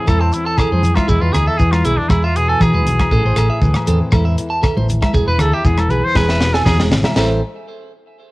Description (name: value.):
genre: highlife guitar band.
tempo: 119 BPM.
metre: 4/4.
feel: straight.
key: A harmonic minor.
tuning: A4 = 442 Hz.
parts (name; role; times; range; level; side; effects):
clear trumpet; melody; 0.0-6.8 s; C4 to C5; -20 LUFS; equal; cassette tape.
flamenco guitar; accompaniment; 0.0-7.4 s; E2 to G#4; -22 LUFS; left 2 dB; cassette tape.
clean electric guitar; arpeggios; 0.1-7.4 s; G#4 to A5; -22 LUFS; right 4 dB; cassette tape, tape echo.
hollow-body short-scale fingered electric bass; bass; 0.1-7.4 s; E1 to E3; -16 LUFS; equal; none.
tight funk drum kit; drums; 0.1-7.3 s; crash cymbal, hi-hat, kick drum, rim click, snare drum; -18 LUFS; equal; cassette tape.
agogo bells; percussion; 0.1-7.3 s; none; -30 LUFS; left 4 dB; none.
congas; percussion; 0.1-7.4 s; none; -25 LUFS; equal; none.
shekere; percussion; 0.1-7.4 s; none; -25 LUFS; right 1 dB; none.
room: small room reverb.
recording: home recording on cassette.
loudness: -13 LUFS.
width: side -20 dB against mid.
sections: 0.0-7.2 A section; 7.2-8.3 B section.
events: trumpet solo 0.0-7.2; drum fill 6.2-7.2.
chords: 0.0 Am; 1.1 E; 3.1 Am; 5.1 E; 7.2 Am.